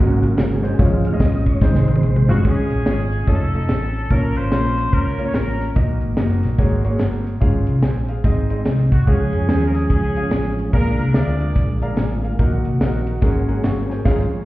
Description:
uptempo gospel; 145 BPM; 4/4; swing 63% on 8ths; Db major; A4 = 440 Hz
clear grand piano; accompaniment; 0.0-14.2 s; Ab2 to Db6; -24 LUFS; left 1 dB
tonewheel organ; sustained chords; 0.0-2.4, 9.1-14.4 s; C3 to F5; -23 LUFS; right 2 dB; slow rotary speaker, chorus vibrato
hollow-body short-scale fingered electric bass; bass; 0.0-14.2 s; F1 to F2; -20 LUFS; equal
tight funk drum kit; drums; 0.2-14.2 s; crash cymbal, hi-hat, kick drum, snare drum, toms; -19 LUFS; equal
clear trumpet; melody; 2.3-5.7, 8.9-11.8 s; Gb4 to D5; -28 LUFS; equal
warm horn section; melody; 2.3-5.7, 8.9-11.9 s; Db4 to D5; -30 LUFS; left 1 dB
light reverb; heard muffled through a wall, stone room reverb, EQ; -16 LUFS; side -17 dB against mid
0.0-2.4 A section; 2.4-14.4 B section
tonewheel organ solo 0.0-2.4; drum fill 1.6-2.4; grand piano fill 11.6-12.4; band accent 14.1-14.4
0.0 Ab9sus4; 0.8 Db/Ab; 1.6 Ab; 2.4 Db; 3.3 Faug7; 4.1 Bbm; 5.8 Ebm; 6.6 Ab9sus4; 7.4 Db/Ab; 8.2 Ab; 9.1 Db; 10.7 Bb7; 12.4 Ebm/Bb; 13.2 Ab9sus4

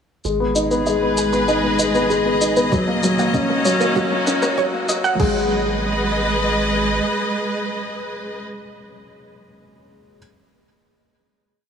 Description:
piano and strings electronica; 97 BPM; 4/4; straight; G# minor; A4 = 440 Hz
clear studio string section; sustained chords; 0.2-8.4 s; D#3 to D#5; -22 LUFS; equal; sidechain pumping
warbly dusty pluck; arpeggios; 0.2-5.5 s; F#4 to B5; -25 LUFS; right 2 dB; chorus, sidechain pumping, tape echo
dark upright piano; riff; 0.2-10.2 s; F#3 to D#4; -20 LUFS; left 1 dB; tape echo
round analog bass; bass; 0.2-7.0 s; D#1 to G#1; -29 LUFS; right 1 dB; sidechain pumping
electronic shaker and crash cymbal; drums; 0.2-5.3 s; -28 LUFS; equal; high-pass filter on perc, high-pass filter on cymbals, high-pass filter on room
electronic kick drum; drums; 2.7-5.3 s; -24 LUFS; right 1 dB; overdrive
moderate huge ambient reverb, RT60 4.2 s; high-pass filter, small room ambience; -17 LUFS; side -7 dB against mid
0.2-5.2 build; 5.2-7.7 final chord
build-up 0.2-5.2; filter sweep on synth arpeggio sound 0.2-5.2
0.2 G#m; 2.7 D#m7; 5.2 G#m

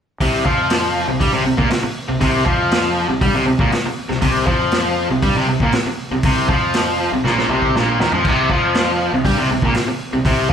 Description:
classic rock; 119 BPM; 4/4; straight; A4 = 439 Hz
overdriven electric guitar; riff; 0.2-10.5 s; Bb2 to G3; -17 LUFS; equal
fuzz fingered electric bass; bass; 0.2-10.5 s; Bb1 to G2; -25 LUFS; equal; overdrive
vintage drum kit; drums; 0.2-10.5 s; crash cymbal, hi-hat, kick drum, snare drum, toms; -20 LUFS; equal
moderate large studio reverb, RT60 1.4 s; band playing live in one room; -15 LUFS; side -8 dB against mid
0.2-10.5 A section
drum fill 7.2-8.2
0.2 C5

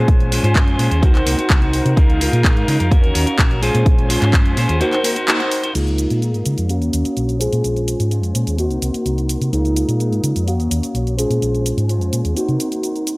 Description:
filtered disco house; 127 BPM; 4/4; straight; A4 = 445 Hz
tine electric piano; accompaniment; 0.0-13.2 s; Bb3 to F5; -22 LUFS; equal; phaser, sidechain pumping, low-pass filter
warm symphonic violin section; sustained chords; 0.0-13.2 s; C4 to Eb6; -31 LUFS; equal; sidechain pumping, low-pass filter
electric guitar at the edge of break-up; riff; 0.0-13.2 s; Ab3 to C5; -24 LUFS; equal; sidechain pumping, low-pass filter
hollow-body short-scale fingered electric bass; bass; 0.0-12.6 s; Bb1 to Db3; -18 LUFS; equal; sidechain pumping, low-pass filter
electronic kick drum; drums; 0.1-4.4 s; -14 LUFS; equal
house drum kit; drums; 0.1-13.2 s; crash cymbal, handclaps, hi-hat, shaker; -23 LUFS; equal; sidechain pumping on hats, sidechain pumping on cymbals, sidechain pumping on perc
little or no reverb; dry, gritty hardware recording; -15 LUFS; side -24 dB against mid
0.0-5.7 A section; 5.7-13.2 B section
filter sweep 0.0-5.7, 5.7-13.2; break 4.8-5.7; band accent 5.3
0.0 Bbm9; 1.0 Cm7b5; 2.0 Db69; 2.9 Ebm7; 3.6 Bbm9; 4.8 Ebm6/Bb; 5.7 Db69; 6.7 Ebm7; 7.4 Bbm9; 8.6 Cm7b5; 9.5 Db69; 10.5 Ebm7; 11.2 Bbm9; 12.4 Cm7b5

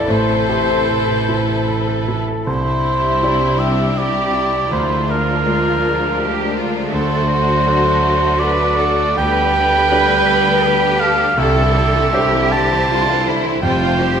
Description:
cinematic; 73-83 BPM; 3/4; rubato; C major; A4 = 440 Hz
warm studio violin section; melody; 0.0-14.2 s; D4 to C5; -24 LUFS; left 3 dB
flute section; second line; 0.0-2.1 s; C5; -20 LUFS; left 4 dB
rich studio violin section; second line; 0.0-14.2 s; A3 to A4; -24 LUFS; left 4 dB
clear concert grand piano; accompaniment; 0.0-14.2 s; C2 to D5; -21 LUFS; equal
rich studio viola section; accompaniment; 0.0-14.2 s; D3 to A4; -24 LUFS; right 1 dB
rich studio cello section; bass; 0.0-14.2 s; C3 to B4; -24 LUFS; right 2 dB
warm studio double bass section; bass; 0.0-14.2 s; F1 to D2; -24 LUFS; right 2 dB
warm cor anglais; second line; 2.5-14.2 s; Bb4 to A5; -17 LUFS; right 2 dB
wet scoring stage reverb, RT60 1.6 s; -14 LUFS; side -7 dB against mid
0.0-2.5 A section; 2.5-14.2 B section
0.1 Amadd9; 2.5 Cadd9; 4.7 Bb7/D; 6.9 D7; 9.2 G/D; 11.4 Cadd9; 13.6 Fadd9

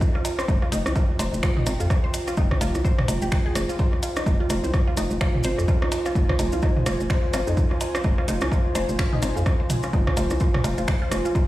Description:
minimal techno; 127 BPM; 4/4; swing 59% on 16ths; F minor; A4 = 441 Hz
electronic kick drum; drums; 0.0-11.5 s; -22 LUFS; equal
maracas; percussion; 0.0-11.5 s; -37 LUFS; right 2 dB
organic electronic drum kit; percussion; 0.0-11.5 s; rim click, toms, woodblock; -29 LUFS; equal; overdrive, digital delay
deep dark ambient pad; texture; 0.0-11.5 s; F4 to Ab5; -30 LUFS; right 1 dB; chorus, built-in reverb, sidechain pumping
resonant blip pluck; riff; 0.1-11.4 s; Eb4 to C5; -32 LUFS; equal; phaser, sidechain pumping, dub echo
garage drum kit; drums; 0.2-11.2 s; finger snaps, hi-hat; -34 LUFS; left 1 dB
hollow knocking FM bass; bass; 0.5-11.2 s; F1 to F2; -25 LUFS; equal; sidechain pumping
light reverb, digital ambience; played on a big sound system in a bare room, large studio reverb; -20 LUFS; side -16 dB against mid
0.0-11.5 A section
0.0 Fm

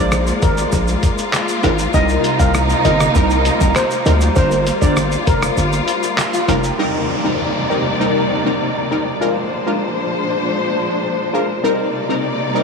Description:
dancehall; 99 BPM; 4/4; straight; C minor; A4 = 440 Hz
steel pan; melody; 0.0-5.5 s; Bb4 to F5; -22 LUFS; left 1 dB; tape echo
synth brass stab; accompaniment; 0.0-12.6 s; G3 to Bb4; -21 LUFS; left 1 dB; chorus, phaser
warm studio string section; sustained chords; 0.0-12.6 s; Bb2 to D5; -20 LUFS; left 1 dB; sidechain pumping
hard-hitting 808-style bass; bass; 0.0-6.7 s; F1 to D2; -18 LUFS; equal
lo-fi sampler-style drum kit; drums; 0.1-6.8 s; handclaps, hi-hat, kick drum, rim click, shaker; -20 LUFS; equal
tube shaker and timbales; percussion; 0.1-6.8 s; -30 LUFS; right 6 dB
electric guitar at the edge of break-up; arpeggios; 6.3-6.9 s; F4 to Bb4; -27 LUFS; left 1 dB
downlifter; sound effects; 6.8-11.6 s; -27 LUFS; right 1 dB
wet huge ambient reverb, RT60 8.0 s; dreamy mix soaked in reverb; -14 LUFS; side -5 dB against mid
0.0-6.8 A section; 6.8-12.6 B section
kick muted 5.6-6.8
0.0 Bb7; 1.9 Cm7; 4.4 Gm7; 6.8 Cm7; 9.2 Bb7; 11.6 Cm7

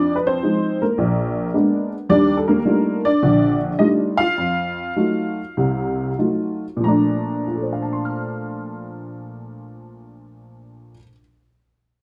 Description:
solo jazz; 92-108 BPM; 4/4; swing 67% on 8ths; Bb major; A4 = 440 Hz
honky-tonk upright piano; solo; 0.0-11.2 s; Bb1 to F6; -20 LUFS; equal
moderate stone room reverb, RT60 1.2 s; band playing live in one room; -20 LUFS; mono
0.0-2.1 A section; 2.1-6.8 B section; 6.8-9.4 C section
slowing down 2.1-6.8
0.0 Fm7; 1.0 Bb7b9; 2.1 Ebmaj9#11; 4.4 F7b9; 6.8 Bbmaj7

